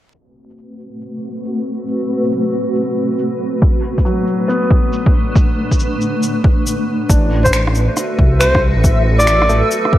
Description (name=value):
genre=future garage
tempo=138 BPM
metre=4/4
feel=swing 65% on 16ths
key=A dorian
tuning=A4 = 443 Hz
part: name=granular cloud pad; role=sustained chords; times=1.0-10.0 s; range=A3 to B4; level=-19 LUFS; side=equal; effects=built-in reverb, sidechain pumping
part: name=electronic shaker, rim click and finger snaps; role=drums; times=0.1-9.9 s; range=none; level=-22 LUFS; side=equal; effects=none
part: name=electronic kick drum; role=drums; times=3.6-10.0 s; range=none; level=-13 LUFS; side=equal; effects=none
part: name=felt-muted upright piano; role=accompaniment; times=4.0-10.0 s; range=F#3 to D4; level=-22 LUFS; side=left 1 dB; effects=sidechain pumping, tape echo
part: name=dark detuned saw bass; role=bass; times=7.1-9.6 s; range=A1 to C2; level=-15 LUFS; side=equal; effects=tube saturation, sidechain pumping
part: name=backwards swelling texture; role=texture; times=7.9-10.0 s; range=E5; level=-24 LUFS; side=right 1 dB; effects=built-in reverb
part: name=breathy alto saxophone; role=melody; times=7.4-9.6 s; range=C5 to D5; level=-17 LUFS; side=equal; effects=vintage 12-bit sampler grit, analog delay
room=light reverb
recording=vinyl crackle, low-pass filter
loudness=-13 LUFS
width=side -13 dB against mid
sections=0.1-7.1 A section; 7.1-10.0 B section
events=filter sweep on ambient pad 0.1-7.1; filter sweep 0.1-7.1; break 6.7-7.1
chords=0.1 Am69; 3.6 Bm7; 7.1 Am69